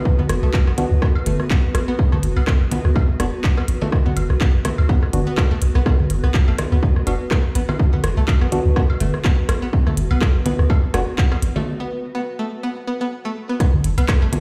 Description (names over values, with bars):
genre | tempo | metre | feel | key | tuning
minimal techno | 124 BPM | 4/4 | swing 56% on 16ths | B minor | A4 = 439 Hz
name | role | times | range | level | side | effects
granular cloud pad | texture | 0.0-11.7 s | B3 to B4 | -32 LUFS | equal | built-in reverb, sidechain pumping
electronic kick drum | drums | 0.1-14.2 s | none | -21 LUFS | equal | none
string-like resonator pluck | riff | 0.2-14.2 s | A3 to B3 | -31 LUFS | equal | chorus, sidechain pumping, digital delay
punchy sub bass | bass | 0.2-14.3 s | F#1 to D2 | -21 LUFS | equal | sidechain pumping
electronic congas, rim click and woodblock | percussion | 0.2-14.4 s | none | -28 LUFS | equal | delay
minimal click drum kit | drums | 0.3-14.4 s | handclaps, hi-hat | -32 LUFS | equal | overdrive
percussive organ stab | stabs | 0.8-11.0 s | B3 to F#4 | -30 LUFS | equal | chorus, delay
room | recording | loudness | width
light reverb, digital ambience | played on a big sound system in a bare room, stone room reverb | -19 LUFS | mono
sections
0.0-13.6 A section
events
break 11.7-13.6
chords
0.0 B5